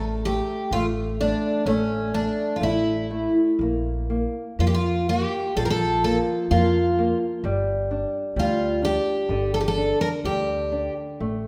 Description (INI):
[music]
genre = fado-style ballad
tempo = 60-66 BPM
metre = 2/4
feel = rubato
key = unclear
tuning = A4 = 439 Hz
[part]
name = nylon-string guitar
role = accompaniment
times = 0.0-11.5 s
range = D3 to D4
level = -28 LUFS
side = equal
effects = none
[part]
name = upright bass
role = bass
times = 0.0-11.5 s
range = G1 to F2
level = -30 LUFS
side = equal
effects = none
[part]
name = picked twelve-string acoustic guitar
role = melody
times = 0.3-10.9 s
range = C#4 to Bb4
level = -26 LUFS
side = equal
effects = none
[sound]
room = moderate scoring stage reverb, RT60 2.1 s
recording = none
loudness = -23 LUFS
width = mono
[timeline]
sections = 0.0-11.5 A section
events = none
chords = 0.0 D5/A; 3.6 Bb5; 7.4 G5